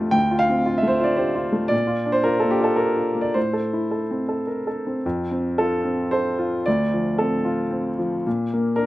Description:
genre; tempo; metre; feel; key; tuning
neoclassical minimalist piano; 106-116 BPM; 3/4; rubato; F major; A4 = 441 Hz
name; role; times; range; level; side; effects
warm grand piano; solo; 0.0-8.9 s; D2 to A5; -20 LUFS; equal; none
room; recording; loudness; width
light reverb; recorded outdoors, with no room sound; -20 LUFS; side -16 dB against mid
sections
0.0-5.0 A section; 5.0-8.9 A section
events
none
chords
0.2 Dm7; 1.7 Bb; 3.4 Am; 5.0 F; 6.7 Dm7; 8.3 Bb

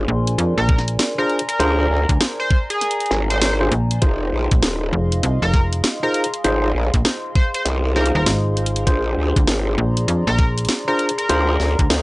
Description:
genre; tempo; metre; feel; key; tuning
glitch hop; 99 BPM; 4/4; swing 63% on 16ths; unclear; A4 = 437 Hz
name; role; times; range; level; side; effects
dark analog pad; sustained chords; 0.0-12.0 s; Ab4 to C6; -29 LUFS; equal; chorus, phaser, sidechain pumping
tine electric piano; stabs; 0.0-11.5 s; D4 to C5; -23 LUFS; equal; sidechain pumping, analog delay
growl bass; bass; 0.0-12.0 s; Eb1 to D2; -19 LUFS; equal; chorus, tube saturation
slap-like FM bass; bass; 0.1-11.9 s; Eb1 to F2; -19 LUFS; equal; tube saturation
drum and bass drum kit; drums; 0.3-12.0 s; hi-hat, snare drum; -22 LUFS; equal; none
sync lead; melody; 0.6-11.8 s; Ab4 to C5; -23 LUFS; equal; chorus
electronic kick drum; drums; 0.7-11.9 s; none; -16 LUFS; equal; none
room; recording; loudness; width
little or no reverb; dry, gritty hardware recording, cassette tape, nothing above 11.0 kHz; -16 LUFS; side -22 dB against mid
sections
0.0-12.0 A section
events
none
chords
0.0 Bb9; 4.0 Fm7; 8.9 Bb9

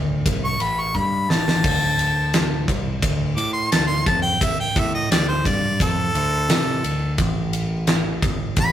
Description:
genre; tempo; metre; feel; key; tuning
blues rock power trio and southern rock; 87 BPM; 4/4; straight; unclear; A4 = 440 Hz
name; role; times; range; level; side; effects
growling fingered electric bass; bass; 0.0-8.7 s; G1 to C3; -24 LUFS; equal; overdrive
huge arena drum kit; drums; 0.3-8.7 s; crash cymbal, kick drum, ride cymbal, snare drum; -22 LUFS; equal; none
bright harmonica; melody; 0.4-8.7 s; A4 to D6; -22 LUFS; equal; overdrive
room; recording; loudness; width
light reverb; rough rehearsal-room recording; -18 LUFS; side -11 dB against mid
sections
0.0-8.7 A section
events
harmonica solo 0.0-8.7; drum fill 0.9-1.6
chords
0.0 A7; 1.6 D5; 4.4 Dm7; 7.2 A5

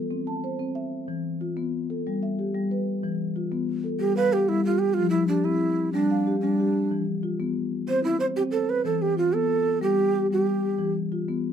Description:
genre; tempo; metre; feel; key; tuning
southern african traditional, mbira-style interlocking cycle; 124 BPM (dotted quarters); 12/8; straight; unclear; A4 = 442 Hz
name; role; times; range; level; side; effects
marimba with soft mallets; arpeggios; 0.0-11.5 s; E3 to B5; -26 LUFS; left 3 dB; none
breathy low Native American-style wooden flute; melody; 4.0-10.9 s; D4 to C5; -24 LUFS; right 4 dB; none
room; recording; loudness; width
moderate small room reverb, RT60 0.5 s; minimal, uncompressed stereo recording; -23 LUFS; side -8 dB against mid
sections
0.0-4.0 A section; 4.0-11.5 B section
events
none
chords
0.1 C; 1.1 E5; 2.1 G; 3.0 E5; 4.0 G7sus2; 5.0 F5; 5.9 G5; 6.9 Em; 7.9 Cmaj7(no3); 8.8 E5; 9.8 N.C.; 10.8 Em

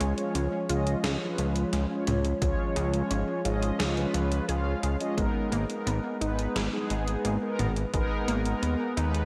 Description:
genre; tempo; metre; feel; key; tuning
synthwave; 87 BPM; 4/4; straight; unclear; A4 = 440 Hz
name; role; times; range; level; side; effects
lush unison pad; sustained chords; 0.0-9.2 s; E#3 to C#4; -35 LUFS; equal; chorus
analog pluck; arpeggios; 0.0-9.2 s; E#3 to G#4; -38 LUFS; equal; none
mellow synth brass; stabs; 0.0-9.2 s; G#3 to E#5; -35 LUFS; equal; chorus, digital delay
fat analog bass; bass; 0.0-9.2 s; G#1 to D#2; -32 LUFS; equal; none
gated 80s digital drum machine; drums; 0.0-9.2 s; hi-hat, snare drum, toms; -37 LUFS; equal; gated reverb, gated reverb snare
electronic kick drum; drums; 2.4-8.1 s; none; -33 LUFS; equal; overdrive
room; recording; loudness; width
moderate concert hall reverb, RT60 2.4 s; big arena sound; -28 LUFS; mono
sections
0.0-9.2 A section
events
none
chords
0.0 C#; 5.2 G#madd9

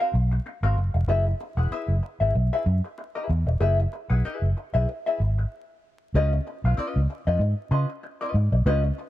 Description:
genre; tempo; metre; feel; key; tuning
funk; 95 BPM; 4/4; swing 56% on 16ths; unclear; A4 = 438 Hz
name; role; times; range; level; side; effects
vintage hollow-body jazz guitar; accompaniment; 0.0-9.0 s; C4 to Gb5; -28 LUFS; left 2 dB; wah
vintage muted fingered electric bass; bass; 0.1-8.9 s; Fb1 to Db3; -21 LUFS; equal; none
room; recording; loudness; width
little or no reverb; dark, warm production, vinyl crackle; -22 LUFS; side -14 dB against mid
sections
0.0-6.1 A section; 6.1-9.1 B section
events
stop 5.5-6.1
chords
0.0 Ab13; 1.1 Gb9sus4; 6.1 Db9

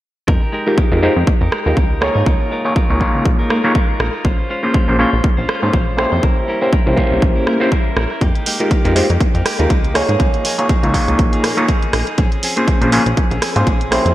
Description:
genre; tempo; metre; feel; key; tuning
filtered disco house; 121 BPM; 4/4; swing 56% on 16ths; F minor; A4 = 440 Hz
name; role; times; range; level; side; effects
direct-recorded clean electric guitar; riff; 0.3-14.1 s; F3 to C5; -24 LUFS; equal; sidechain pumping, low-pass filter
plucky analog bass; bass; 0.3-14.1 s; Bb1 to Bb2; -19 LUFS; equal; sidechain pumping, low-pass filter
electronic kick drum; drums; 0.3-13.8 s; none; -15 LUFS; equal; overdrive
overdriven reed electric piano; accompaniment; 0.7-14.1 s; Ab3 to Db5; -18 LUFS; equal; phaser, sidechain pumping, low-pass filter
punchy analog drum machine; drums; 1.5-14.1 s; hi-hat, rim click; -22 LUFS; right 1 dB; sidechain pumping on hats, gated reverb
room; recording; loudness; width
light reverb; bright 1980s-style digital production; -13 LUFS; side -15 dB against mid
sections
0.3-14.1 A section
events
none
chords
0.3 Fm11; 2.0 Db69; 4.2 Bbm9; 6.2 C7b9; 8.2 Fm11; 9.9 Db69; 12.2 Bbm9

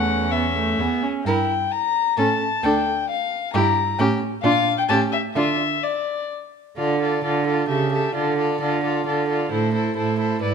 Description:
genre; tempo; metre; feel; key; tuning
quick classical-period movement for string quartet; 131 BPM; 3/4; rubato; D minor; A4 = 440 Hz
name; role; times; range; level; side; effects
dark violin; melody; 0.0-10.5 s; C5 to Bb5; -24 LUFS; left 7 dB; none
warm violin; second line; 0.0-10.5 s; C#4 to B4; -26 LUFS; left 2 dB; none
rich viola; accompaniment; 0.0-10.5 s; A3 to G4; -25 LUFS; right 3 dB; none
rich cello; bass; 0.0-10.5 s; D2 to D3; -24 LUFS; right 6 dB; none
room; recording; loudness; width
moderate recital hall reverb, RT60 1.4 s; none; -19 LUFS; side -6 dB against mid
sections
0.0-6.8 A section; 6.8-10.5 B section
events
none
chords
0.0 A/E; 0.8 E; 1.3 Edim/G; 2.2 A; 2.6 Dm; 3.5 Edim/G; 4.0 A7; 4.4 Bb; 4.9 A7; 5.4 N.C.; 6.8 Dm; 7.7 A7/C#; 8.1 Dm; 9.5 Am

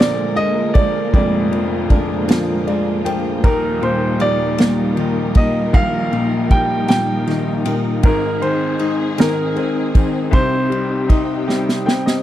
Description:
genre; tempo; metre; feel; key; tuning
six-eight pop ballad; 52 BPM (dotted quarters); 6/8; straight; unclear; A4 = 439 Hz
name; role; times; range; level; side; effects
clear baby grand piano; melody; 0.0-11.8 s; Bb4 to G5; -22 LUFS; right 1 dB; none
bright upright piano; accompaniment; 0.0-12.2 s; Eb1 to G5; -20 LUFS; left 5 dB; none
dark studio string section; sustained chords; 0.0-12.2 s; D3 to Bb4; -23 LUFS; right 1 dB; none
direct-recorded clean electric guitar; arpeggios; 0.0-12.2 s; Ab2 to Ab4; -26 LUFS; right 12 dB; none
unplugged drum kit; drums; 0.0-12.2 s; kick drum, ride cymbal, snare drum; -14 LUFS; equal; none
room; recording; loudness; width
little or no reverb; dry, close 1970s-style studio recording; -15 LUFS; side -12 dB against mid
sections
0.0-12.2 A section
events
upright piano fill 2.3-3.4, 11.5-12.2; drum fill 11.5-12.2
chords
0.0 Bb7; 3.4 Ebadd9; 8.0 Ab; 10.3 Cm

